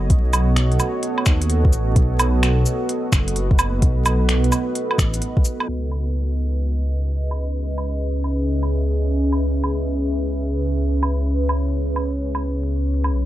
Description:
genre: future garage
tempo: 129 BPM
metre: 4/4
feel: swing 66% on 16ths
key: C# minor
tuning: A4 = 441 Hz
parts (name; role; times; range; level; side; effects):
- deep dark ambient pad; sustained chords; 0.0-13.3 s; B3 to E5; -24 LUFS; right 1 dB; chorus, built-in reverb, vintage 12-bit sampler grit, sidechain pumping
- dark detuned saw bass; bass; 0.0-13.3 s; F#1 to D#2; -20 LUFS; equal; sidechain pumping
- electronic kick drum; drums; 0.1-5.4 s; none; -17 LUFS; equal; none
- organic electronic drum kit; drums; 0.1-13.1 s; cabasa, finger snaps, hi-hat, woodblock; -24 LUFS; right 1 dB; none
room: light reverb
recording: vinyl crackle, low-pass filter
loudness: -18 LUFS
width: side -14 dB against mid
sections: 0.0-5.7 A section; 5.7-13.3 B section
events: filter sweep 5.7-13.3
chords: 0.0 B7; 5.7 C#m7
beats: | 0.10 0.57 1.03 1.50 | 1.97 2.43 2.90 3.36 | 3.83 4.29 4.75 5.22 | 5.69 6.15 6.62 7.08 | 7.55 8.01 8.48 8.94 | 9.41 9.87 10.34 10.80 | 11.27 11.73 12.20 12.66 | 13.13

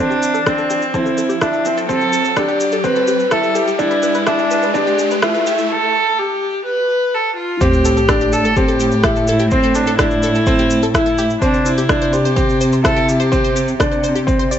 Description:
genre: piano and strings electronica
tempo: 126 BPM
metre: 4/4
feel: straight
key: A minor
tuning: A4 = 441 Hz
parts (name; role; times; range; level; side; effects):
- dark viola; melody; 0.0-13.8 s; C4 to B4; -18 LUFS; equal; none
- wide unison pluck; arpeggios; 0.0-14.6 s; G4 to D5; -25 LUFS; left 2 dB; sidechain pumping, ping-pong delay
- warm upright piano; riff; 0.0-14.6 s; C4 to E4; -18 LUFS; equal; ping-pong delay
- riser and sub drop; sound effects; 0.1-9.5 s; none; -24 LUFS; right 1 dB; none
- electronic shaker and rim click; drums; 0.1-14.6 s; none; -22 LUFS; equal; high-pass filter on perc, studio ambience, high-pass filter on snare
- electronic kick drum; drums; 0.5-14.4 s; none; -22 LUFS; equal; studio ambience
- dark chamber cello section; bass; 7.6-14.6 s; A2 to C3; -20 LUFS; equal; tube saturation, sidechain pumping
room: moderate recital hall reverb, RT60 1.4 s, small room reverb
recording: high-pass filter, nothing above 8.0 kHz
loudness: -13 LUFS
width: side -9 dB against mid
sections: 0.0-7.6 A section; 7.6-14.6 B section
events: build-up 0.0-7.6; filter sweep on synth arpeggio sound 0.0-7.6; filter sweep 0.0-7.6; riser 0.1-5.7; break 5.7-7.6; drop 7.6-14.6; impact 7.6-9.5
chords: 0.0 Am7; 3.8 Em7; 7.6 Am7; 11.4 Csus2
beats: 0.47 0.94 1.42 | 1.90 2.37 2.85 3.33 | 3.80 4.28 4.75 5.23 | 5.71 6.18 6.66 7.13 | 7.61 8.09 8.56 9.04 | 9.52 9.99 10.47 10.94 | 11.42 11.90 12.37 12.85 | 13.32 13.80 14.28

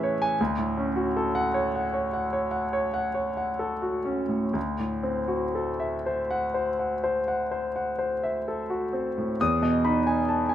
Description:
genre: classical, impressionist solo piano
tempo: 59-81 BPM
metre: 5/4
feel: rubato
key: unclear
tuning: A4 = 439 Hz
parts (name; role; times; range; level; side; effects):
- clear concert grand piano; solo; 0.0-10.5 s; D2 to D#6; -24 LUFS; equal; none
room: light reverb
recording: minimal, uncompressed stereo recording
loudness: -24 LUFS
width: side -11 dB against mid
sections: 0.0-9.4 A section; 9.4-10.5 B section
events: none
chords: 0.4 Dmaj7; 4.6 D9; 9.4 Emaj7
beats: | 0.40 1.16 1.94 2.74 3.61 | 4.55 5.56 6.55 7.53 8.46 | 9.40 10.28

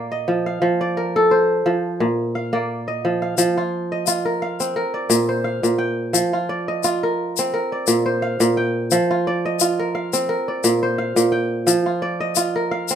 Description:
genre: west african traditional, West African string and xylophone music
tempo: 87 BPM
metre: 4/4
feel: swing 55% on 16ths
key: unclear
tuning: A4 = 440 Hz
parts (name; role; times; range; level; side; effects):
- kora; arpeggios; 0.0-13.0 s; Bb2 to G5; -18 LUFS; right 1 dB; none
- tube shaker; percussion; 3.4-13.0 s; none; -22 LUFS; left 12 dB; none
room: light reverb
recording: minimal, uncompressed stereo recording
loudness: -18 LUFS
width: side -8 dB against mid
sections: 0.0-3.4 A section; 3.4-13.0 B section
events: none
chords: 0.0 Bb; 0.6 F; 2.0 Bb; 3.4 F5; 4.8 Bb; 6.1 F5; 7.5 Bb; 8.9 F5; 10.3 Bb; 11.7 F5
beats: | 0.61 1.30 2.00 2.69 | 3.38 4.07 4.76 5.45 | 6.14 6.84 7.53 8.22 | 8.91 9.60 10.29 10.98 | 11.67 12.36

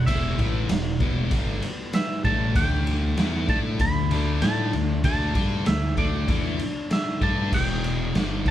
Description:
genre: quiet-loud alternative rock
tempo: 97 BPM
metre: 4/4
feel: straight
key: unclear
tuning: A4 = 442 Hz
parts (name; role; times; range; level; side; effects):
- twangy electric guitar; melody; 0.0-8.5 s; D5 to B5; -30 LUFS; right 2 dB; none
- fingerpicked plugged-in swing-style acoustic guitar; arpeggios; 0.0-7.5 s; E2 to A4; -35 LUFS; left 4 dB; none
- growling picked electric bass; bass; 0.0-8.5 s; E1 to A2; -27 LUFS; equal; overdrive
- sludgy distorted guitar; riff; 0.1-8.5 s; E2 to A4; -30 LUFS; left 5 dB; overdrive
- thick fuzz guitar; riff; 0.1-8.5 s; E2 to A4; -31 LUFS; right 2 dB; distortion
- raw garage drum kit; drums; 0.1-8.5 s; crash cymbal, kick drum, ride cymbal, snare drum; -25 LUFS; equal; none
room: moderate studio reverb, RT60 0.5 s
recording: band playing live in one room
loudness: -21 LUFS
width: side -12 dB against mid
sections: 0.0-8.5 A section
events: none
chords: 0.0 Em; 2.6 D5; 7.5 Em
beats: | 0.08 0.70 1.32 1.94 | 2.56 3.18 3.80 4.42 | 5.04 5.67 6.29 6.91 | 7.53 8.15

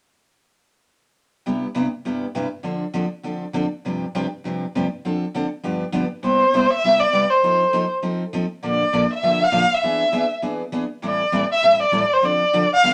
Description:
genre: jazz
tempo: 201 BPM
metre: 4/4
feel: swing 59% on 8ths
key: C major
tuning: A4 = 445 Hz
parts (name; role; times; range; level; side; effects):
- picked steel-string acoustic guitar; accompaniment; 1.5-12.9 s; G2 to A4; -26 LUFS; equal; none
- warm violin; melody; 6.3-12.9 s; C5 to F5; -19 LUFS; equal; none
room: moderate studio reverb, RT60 0.6 s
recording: none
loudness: -21 LUFS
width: mono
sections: 1.5-6.2 A section; 6.2-12.9 B section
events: none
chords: 1.5 Cmaj7/G; 2.6 Dm7; 3.8 G7sus4; 5.0 Dm7; 5.6 G7; 6.2 Cmaj7; 7.4 F7; 8.6 Bbmaj7; 9.8 E7; 11.0 Am7; 12.2 Dm7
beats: | 1.45 1.75 2.05 2.35 | 2.65 2.95 3.25 3.55 | 3.85 4.15 4.45 4.75 | 5.04 5.34 5.64 5.94 | 6.24 6.54 6.84 7.14 | 7.44 7.74 8.04 8.34 | 8.63 8.93 9.23 9.53 | 9.83 10.13 10.43 10.72 | 11.02 11.32 11.62 11.92 | 12.22 12.52 12.82

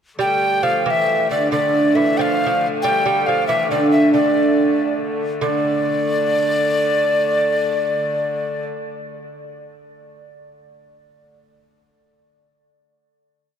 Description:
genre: medieval dance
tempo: 90-99 BPM (dotted quarters)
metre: 6/8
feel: straight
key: D minor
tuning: A4 = 440 Hz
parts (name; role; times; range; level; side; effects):
- mellow hollow soprano recorder; melody; 0.2-8.6 s; D5 to G5; -19 LUFS; equal; none
- lute; second line; 0.2-8.9 s; D3 to G3; -20 LUFS; right 3 dB; none
- rich hurdy-gurdy; drone; 0.2-8.7 s; D3 to A3; -26 LUFS; left 4 dB; none
room: wet cathedral reverb, RT60 5.6 s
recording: none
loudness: -16 LUFS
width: side -8 dB against mid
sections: 0.2-5.4 A section; 5.4-7.9 final chord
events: speeding up 0.2-7.9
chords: none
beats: | 0.19 0.86 | 1.52 2.18 | 2.84 3.49 | 4.14 4.78 | 5.41 6.04 | 6.67 7.28

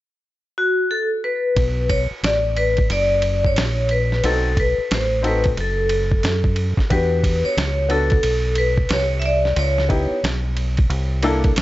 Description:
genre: hip hop, jazz-hop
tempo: 90 BPM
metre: 4/4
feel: swing 62% on 16ths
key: B minor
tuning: A4 = 440 Hz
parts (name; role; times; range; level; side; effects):
- vibraphone with hard mallets; melody; 0.6-10.2 s; F#4 to E5; -20 LUFS; left 1 dB; analog delay
- deep dub fingered electric bass; bass; 1.6-11.6 s; F#1 to F#2; -21 LUFS; equal; none
- lo-fi sampler-style drum kit; drums; 1.6-11.6 s; hi-hat, kick drum, ride cymbal, snare drum; -23 LUFS; equal; none
- clear upright piano; accompaniment; 4.2-11.5 s; Bb3 to A4; -24 LUFS; left 2 dB; none
room: light reverb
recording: nothing above 7.8 kHz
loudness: -17 LUFS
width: side -16 dB against mid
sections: 0.0-1.6 A section; 1.6-11.6 B section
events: none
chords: 0.0 N.C.; 1.6 B5; 4.2 B7b9; 6.9 Em9; 9.6 C#m7b5; 10.9 C13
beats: 0.24 0.90 | 1.57 2.24 2.90 3.57 | 4.24 4.90 5.57 6.24 | 6.90 7.57 8.24 8.90 | 9.57 10.24 10.90 11.57

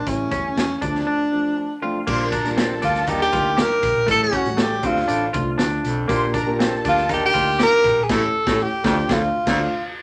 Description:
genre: uptempo 1960s-style soul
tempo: 120 BPM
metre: 4/4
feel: straight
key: unclear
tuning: A4 = 440 Hz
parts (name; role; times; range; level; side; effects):
- breathy tenor saxophone; melody; 0.0-9.9 s; C#4 to Bb4; -22 LUFS; equal; none
- dark grand piano; accompaniment; 0.1-9.7 s; F3 to A5; -29 LUFS; equal; none
- vintage muted fingered electric bass; bass; 0.1-9.6 s; A1 to E2; -32 LUFS; equal; none
- raw garage drum kit; drums; 0.1-9.6 s; crash cymbal, hi-hat, kick drum, snare drum; -28 LUFS; equal; none
- clean electric guitar; riff; 0.3-8.1 s; A3 to G4; -28 LUFS; equal; spring reverb
- warm studio violin section; second line; 2.1-7.5 s; G4 to C6; -30 LUFS; equal; none
- breathy baritone saxophone; riff; 2.1-9.6 s; D2 to Bb2; -31 LUFS; equal; none
room: moderate studio reverb, RT60 0.5 s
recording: none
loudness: -20 LUFS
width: mono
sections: 0.0-2.1 A section; 2.1-10.0 B section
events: grand piano fill 1.3-2.1; band accent 8.1-10.0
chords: 0.1 A7; 0.8 Dm7; 2.1 Bb6; 3.1 Ebmaj7; 4.1 A7; 4.8 Dm7; 6.1 Bb6; 7.1 Ebmaj7; 8.1 A7; 8.8 Dm7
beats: | 0.06 0.56 1.07 1.57 | 2.07 2.58 3.08 3.58 | 4.08 4.58 5.09 5.59 | 6.09 6.59 7.09 7.60 | 8.10 8.60 9.10 9.60

